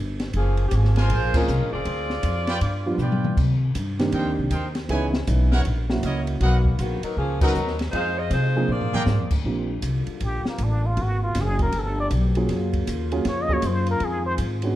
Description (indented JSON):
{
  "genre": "jazz, big band swing",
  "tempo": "158 BPM",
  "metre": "4/4",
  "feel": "swing 64% on 8ths",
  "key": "unclear",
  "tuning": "A4 = 441 Hz",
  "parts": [
    { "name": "upright bass", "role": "bass", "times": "0.0-14.8 s", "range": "Gb1 to C3", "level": "-23 LUFS", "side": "equal", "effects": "none" },
    { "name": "open jazz drum kit", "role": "drums", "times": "0.2-14.7 s", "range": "crash cymbal, hi-hat, kick drum, ride cymbal, snare drum, toms", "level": "-28 LUFS", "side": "equal", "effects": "none" },
    { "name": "mellow saxophone section", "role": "melody", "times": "0.4-3.2, 6.4-9.3 s", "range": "D#3 to Eb5", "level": "-27 LUFS", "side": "left 1 dB", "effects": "none" },
    { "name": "clear trumpet section", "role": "stabs", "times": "1.0-9.0 s", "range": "D4 to Ab5", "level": "-31 LUFS", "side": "right 2 dB", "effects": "none" },
    { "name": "warm upright piano", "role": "accompaniment", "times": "1.3-9.7, 12.4-14.8 s", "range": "Eb3 to Cb5", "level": "-27 LUFS", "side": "right 2 dB", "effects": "none" },
    { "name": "mellow trombone section", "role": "sustained chords", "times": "9.5-14.8 s", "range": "Cb3 to G4", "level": "-33 LUFS", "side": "left 4 dB", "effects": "none" },
    { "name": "trumpet with plunger mute", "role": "melody", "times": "10.2-14.3 s", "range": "Bb3 to Eb5", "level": "-27 LUFS", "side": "equal", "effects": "none" }
  ],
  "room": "light reverb",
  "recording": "dark, warm production",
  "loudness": "-20 LUFS",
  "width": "side -14 dB against mid",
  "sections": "0.0-9.5 A section; 9.5-14.8 B section",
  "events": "band accent 1.3, 7.4; drum fill 3.0-3.4, 8.7-9.1; muted trumpet solo 9.5-14.8",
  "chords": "0.3 Gbmaj9#11; 1.9 Dm7b5; 2.6 G7; 3.4 Cm7; 4.9 Dbm7; 5.7 Gb7; 6.4 Bmaj7; 7.9 Fm7; 8.7 Bb7; 9.5 Bb6; 11.0 Abm9; 11.7 G9; 12.5 Gbmaj7; 14.0 Fm7"
}